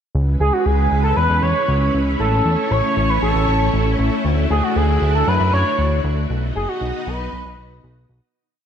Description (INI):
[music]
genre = synthwave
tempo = 117 BPM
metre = 4/4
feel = straight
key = C# minor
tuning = A4 = 440 Hz
[part]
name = string machine, full ensemble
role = sustained chords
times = 0.1-8.3 s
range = G#3 to D#5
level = -22 LUFS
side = equal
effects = ensemble chorus
[part]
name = fat analog bass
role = bass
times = 0.1-8.2 s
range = F#1 to F#2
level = -19 LUFS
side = equal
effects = none
[part]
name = expressive synth lead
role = melody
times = 0.4-8.1 s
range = F#4 to C#5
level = -20 LUFS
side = equal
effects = analog chorus, digital delay
[sound]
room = moderate lush hall reverb, RT60 1.6 s, digital ambience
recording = bright 1980s-style digital production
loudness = -16 LUFS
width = side -8 dB against mid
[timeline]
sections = 0.1-8.4 verse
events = fade-out 5.6-8.4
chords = 0.1 C#m7; 2.2 A; 4.2 Dadd9; 6.3 B